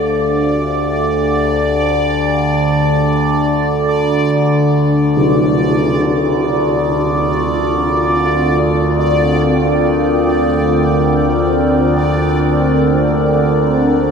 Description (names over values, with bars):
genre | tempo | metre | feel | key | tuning
dark ambient drone | free time | none | none | unclear | A4 = 440 Hz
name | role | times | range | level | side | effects
dark analog pad | sustained chords | 0.0-14.1 s | D3 to G5 | -18 LUFS | equal | chorus
overtone-sweeping drone | drone | 0.0-14.1 s | D2 to D3 | -15 LUFS | equal | chorus, built-in reverb, phaser
bubbling stepped-filter texture | texture | 0.0-14.1 s | D5 | -20 LUFS | right 2 dB | chorus, built-in reverb, shimmer reverb
tam-tam | percussion | 5.2-5.4 s | none | -20 LUFS | right 1 dB | low-pass filter on cymbals
room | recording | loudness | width
wet cathedral reverb, RT60 5.5 s | none | -12 LUFS | side -6 dB against mid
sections
0.0-14.1 A section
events
fade-in on analog synth pad 0.0-14.1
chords
0.0 Dm; 5.2 C5/D